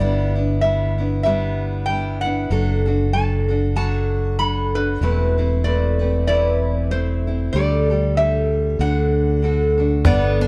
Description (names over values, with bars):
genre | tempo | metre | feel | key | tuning
acoustic folk duo or small band | 96 BPM | 4/4 | swing 57% on 8ths | unclear | A4 = 438 Hz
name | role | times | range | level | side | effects
lap resonator guitar | melody | 0.0-10.5 s | B4 to B5 | -26 LUFS | equal | none
picked steel-string acoustic guitar | accompaniment | 0.0-10.5 s | E2 to B4 | -25 LUFS | equal | none
fingered electric bass | bass | 0.0-10.5 s | E1 to D2 | -22 LUFS | equal | none
cajon | percussion | 10.0-10.2 s | none | -19 LUFS | equal | none
picked twelve-string acoustic guitar | arpeggios | 10.1-10.5 s | B3 to D4 | -25 LUFS | equal | none
room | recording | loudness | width
light reverb | dark, warm production | -20 LUFS | mono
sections
0.0-10.0 A section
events
none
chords
0.0 G6; 2.5 D/F#; 5.0 Amadd9/E; 7.5 Dsus4; 8.8 D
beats
0.62 1.25 1.88 | 2.51 3.13 3.76 4.39 | 5.02 5.65 6.28 6.91 | 7.53 8.16 8.79 9.42 | 10.05